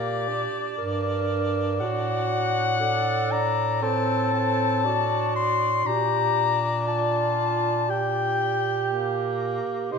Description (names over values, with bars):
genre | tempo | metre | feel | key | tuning
classical, lyrical piece for single-reed quartet | 59 BPM | 4/4 | rubato | G minor | A4 = 439 Hz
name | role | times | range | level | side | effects
mellow soprano saxophone | melody | 0.0-10.0 s | C5 to C6 | -25 LUFS | left 7 dB | none
clear clarinet | second line | 0.0-10.0 s | F4 to Bb4 | -29 LUFS | right 10 dB | none
warm tenor saxophone | accompaniment | 0.0-10.0 s | Bb3 to Eb4 | -29 LUFS | equal | none
warm bass clarinet | bass | 0.0-10.0 s | G2 to C3 | -29 LUFS | right 2 dB | none
room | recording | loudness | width
wet recital hall reverb, RT60 1.5 s | minimal, uncompressed stereo recording | -22 LUFS | side -5 dB against mid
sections
0.0-10.0 A section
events
none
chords
0.0 Gm/Bb; 1.8 D7/A; 5.9 Gm/Bb